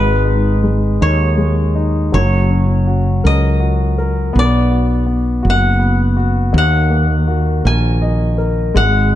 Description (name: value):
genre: six-eight pop ballad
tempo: 54 BPM (dotted quarters)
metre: 6/8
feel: straight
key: unclear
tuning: A4 = 436 Hz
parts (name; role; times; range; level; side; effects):
- koto; melody; 0.0-9.2 s; B4 to G#5; -20 LUFS; left 1 dB; none
- warm concert grand piano; accompaniment; 0.0-9.2 s; D#3 to D#5; -19 LUFS; left 3 dB; none
- woody fretless electric bass; bass; 0.0-9.2 s; F#1 to D#2; -14 LUFS; right 1 dB; none
room: light reverb, small room ambience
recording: dark, warm production, nothing above 10.4 kHz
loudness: -12 LUFS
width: side -12 dB against mid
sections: 0.0-9.2 A section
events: none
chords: 0.0 G#m; 2.1 F#; 4.3 Bm; 6.5 D#m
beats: 1.02 | 2.13 3.24 | 4.34 5.44 | 6.54 7.65 | 8.76